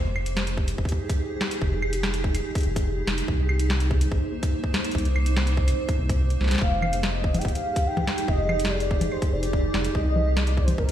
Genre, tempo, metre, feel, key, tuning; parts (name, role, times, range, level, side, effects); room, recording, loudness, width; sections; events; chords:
IDM; 144 BPM; 4/4; straight; F dorian; A4 = 439 Hz
granular cloud pad; sustained chords; 0.0-10.9 s; Bb3 to C5; -30 LUFS; right 1 dB; built-in reverb
round analog bass; bass; 0.0-10.9 s; Eb1 to C2; -25 LUFS; equal
booming analog drum machine; drums; 0.2-10.9 s; claves, congas, hi-hat, snare drum; -29 LUFS; left 1 dB; ping-pong delay
electronic kick drum; drums; 0.6-10.9 s; -25 LUFS; equal; overdrive
warm velvety synth lead; melody; 6.6-10.9 s; Bb4 to G5; -29 LUFS; equal; chorus, tape echo
light reverb, digital ambience; played on a big sound system in a bare room, stone room reverb; -22 LUFS; side -11 dB against mid
0.0-10.9 A section
0.0 Fm9; 3.3 Cm7; 6.6 Fm9; 9.9 Cm7